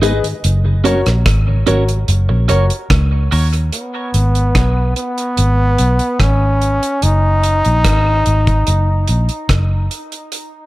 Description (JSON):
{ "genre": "dub reggae", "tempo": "73 BPM", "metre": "4/4", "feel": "straight", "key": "G# minor", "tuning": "A4 = 440 Hz", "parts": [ { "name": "clean electric guitar", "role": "accompaniment", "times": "0.0-3.5 s", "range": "C#4 to D#5", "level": "-21 LUFS", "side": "right 6 dB", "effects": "high-pass filter, dub echo" }, { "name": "mellow tonewheel organ", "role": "accompaniment", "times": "0.0-3.6 s", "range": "F#2 to D#4", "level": "-26 LUFS", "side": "left 1 dB", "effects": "chorus vibrato, slow rotary speaker, high-pass filter, dub echo" }, { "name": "warm upright piano", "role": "stabs", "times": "0.0-3.5 s", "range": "F#4 to D#5", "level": "-22 LUFS", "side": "left 4 dB", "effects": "high-pass filter, dub echo" }, { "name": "vintage muted fingered electric bass", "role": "bass", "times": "0.0-9.9 s", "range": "F#1 to D#2", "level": "-14 LUFS", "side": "equal", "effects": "none" }, { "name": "deep reggae drum kit", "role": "drums", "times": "0.0-10.5 s", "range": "hi-hat, kick drum, rim click", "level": "-19 LUFS", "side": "equal", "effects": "none" }, { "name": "brilliant trombone", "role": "melody", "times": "3.7-9.9 s", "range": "B3 to D#4", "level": "-18 LUFS", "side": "equal", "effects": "dub echo" } ], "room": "light reverb, small room reverb", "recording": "none", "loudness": "-12 LUFS", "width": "side -18 dB against mid", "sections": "0.0-3.7 A section; 3.7-10.7 B section", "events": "break 0.0-3.7; filter sweep 0.4-7.0", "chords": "0.4 F#; 3.7 G#m; 7.0 N.C." }